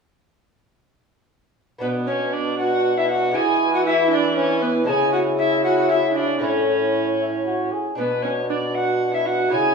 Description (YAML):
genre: classical, renaissance-style consort dance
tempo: 78 BPM (dotted quarters)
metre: 6/8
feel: straight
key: B dorian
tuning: A4 = 439 Hz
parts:
  - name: alto recorder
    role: melody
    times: 1.8-9.7 s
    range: B4 to A5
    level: -23 LUFS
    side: left 4 dB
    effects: none
  - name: warm viola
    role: second line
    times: 1.8-9.7 s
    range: B3 to G#4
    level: -23 LUFS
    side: right 5 dB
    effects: none
  - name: bright trombone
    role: accompaniment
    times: 1.8-9.7 s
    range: D4 to G#4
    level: -27 LUFS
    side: right 1 dB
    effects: none
  - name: lute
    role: accompaniment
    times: 1.8-9.7 s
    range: A2 to E4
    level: -27 LUFS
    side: left 2 dB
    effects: none
  - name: mellow bassoon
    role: bass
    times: 1.8-9.7 s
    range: A2 to E3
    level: -25 LUFS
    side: equal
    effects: none
room: wet stone room reverb, RT60 1.2 s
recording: small room ambience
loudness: -18 LUFS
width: side -5 dB against mid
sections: 1.8-9.7 A section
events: none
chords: 1.8 Bm; 3.3 E; 4.9 C#m; 6.4 A; 8.0 Bm